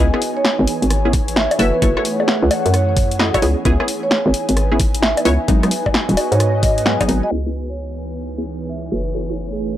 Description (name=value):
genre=UK garage, two-step garage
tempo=131 BPM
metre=4/4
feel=swing 65% on 16ths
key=C# minor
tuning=A4 = 440 Hz
part: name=marimba with soft mallets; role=melody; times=0.0-9.7 s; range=G#4 to E5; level=-24 LUFS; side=right 2 dB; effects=analog delay
part: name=ethereal airy pad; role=sustained chords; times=0.1-9.8 s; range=A3 to G#4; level=-29 LUFS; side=right 1 dB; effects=ensemble chorus, built-in reverb, sidechain pumping
part: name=punchy chord stab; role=stabs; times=0.0-9.4 s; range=F#3 to E5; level=-21 LUFS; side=equal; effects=chorus, analog delay
part: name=hollow knocking FM bass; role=bass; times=0.0-9.8 s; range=D#1 to G#2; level=-19 LUFS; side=equal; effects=none
part: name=airy breathy pad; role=texture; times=0.0-9.8 s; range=E3 to G#5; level=-25 LUFS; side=left 1 dB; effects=chorus, sidechain pumping
part: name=punchy analog drum machine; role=drums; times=0.1-7.2 s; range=bongos, hi-hat, rim click, snare drum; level=-20 LUFS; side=left 1 dB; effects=overdrive
part: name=electronic kick drum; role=drums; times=1.1-7.1 s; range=none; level=-18 LUFS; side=equal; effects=overdrive
part: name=downlifter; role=sound effects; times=7.5-9.8 s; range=none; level=-44 LUFS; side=equal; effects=none
room=digital ambience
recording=dry, gritty hardware recording, low-pass filter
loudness=-15 LUFS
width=side -12 dB against mid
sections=0.0-7.3 A section; 7.3-9.8 B section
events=filter sweep on synth stab 7.3-9.8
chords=0.0 C#m7; 1.6 F#m7; 3.4 C#m7; 5.5 G#m7; 7.3 C#m7; 8.9 F#m7